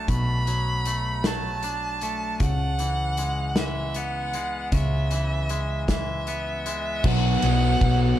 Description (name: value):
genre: post-rock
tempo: 52 BPM (dotted quarters)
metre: 6/8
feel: straight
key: unclear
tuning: A4 = 439 Hz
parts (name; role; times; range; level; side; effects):
- clear violin; melody; 0.0-8.2 s; E5 to B5; -29 LUFS; right 2 dB; digital delay
- twangy electric guitar; arpeggios; 0.0-7.1 s; B2 to D4; -32 LUFS; left 4 dB; digital delay
- hollow-body short-scale picked electric bass; bass; 0.0-8.1 s; B1 to C#2; -26 LUFS; equal; none
- loose indie drum kit; drums; 0.1-8.0 s; crash cymbal, hi-hat, kick drum, ride cymbal, snare drum; -27 LUFS; equal; none
- fuzz guitar; riff; 7.0-8.2 s; B2 to B3; -24 LUFS; equal; distortion
room: little or no reverb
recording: dark, warm production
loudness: -22 LUFS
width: side -12 dB against mid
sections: 0.0-7.1 A section; 7.1-8.2 B section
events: none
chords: 0.0 Bm7; 2.4 C#m7; 7.1 B5